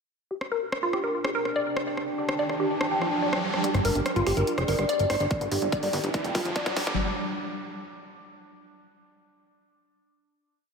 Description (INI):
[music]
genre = psychedelic trance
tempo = 144 BPM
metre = 4/4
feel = straight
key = unclear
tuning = A4 = 441 Hz
[part]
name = overtone-sweeping drone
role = sustained chords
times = 0.9-7.0 s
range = D4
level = -32 LUFS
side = right 2 dB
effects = chorus, built-in reverb, sidechain pumping
[part]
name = woody wave-folded pluck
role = riff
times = 0.3-6.7 s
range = F4 to G5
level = -29 LUFS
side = left 1 dB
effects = chorus, auto-pan, vintage 12-bit sampler grit, sidechain pumping, ping-pong delay
[part]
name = riser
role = sound effects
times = 1.7-7.0 s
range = none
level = -33 LUFS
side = right 1 dB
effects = none
[part]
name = warbly tape-like pad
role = texture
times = 0.9-7.0 s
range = D4 to G5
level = -35 LUFS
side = equal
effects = chorus, built-in reverb, sidechain pumping
[part]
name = big-room dance drum kit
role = drums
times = 0.4-7.0 s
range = hi-hat, rim click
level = -32 LUFS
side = equal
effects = overdrive, high-pass filter on snare, studio reverb, high-pass filter on hats
[part]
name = plucky analog bass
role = bass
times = 3.7-6.9 s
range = F1 to G1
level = -28 LUFS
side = equal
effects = none
[part]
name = electronic kick drum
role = drums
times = 5.3-7.0 s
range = none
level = -31 LUFS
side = equal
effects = overdrive, studio reverb
[sound]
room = wet lush hall reverb, RT60 1.5 s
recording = dreamy mix soaked in reverb, high-pass filter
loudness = -24 LUFS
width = side -5 dB against mid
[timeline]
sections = 0.3-3.6 intro; 3.6-7.0 build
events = riser 1.7-3.6, 3.6-7.0; build-up 3.6-7.0; filter sweep on synth arpeggio sound 3.6-7.0; filter sweep 3.6-7.0; drum fill 5.3-7.0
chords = 0.3 G5